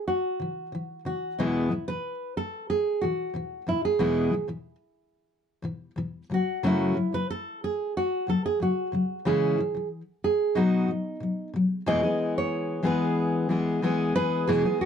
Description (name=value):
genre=acoustic pop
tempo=92 BPM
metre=4/4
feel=straight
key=E major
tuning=A4 = 442 Hz
part: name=nylon-string guitar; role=melody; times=0.0-14.9 s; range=D#4 to D#5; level=-28 LUFS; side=right 2 dB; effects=none
part: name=fingerpicked steel-string acoustic guitar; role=accompaniment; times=0.4-14.9 s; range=E2 to G#4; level=-26 LUFS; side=left 2 dB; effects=none
room=moderate studio reverb, RT60 0.6 s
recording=dark, warm production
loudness=-24 LUFS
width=side -8 dB against mid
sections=0.0-11.9 A section; 11.9-14.9 B section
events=none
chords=0.0 C#m; 1.4 E; 6.3 F#5; 9.2 C#m; 10.6 B; 11.9 E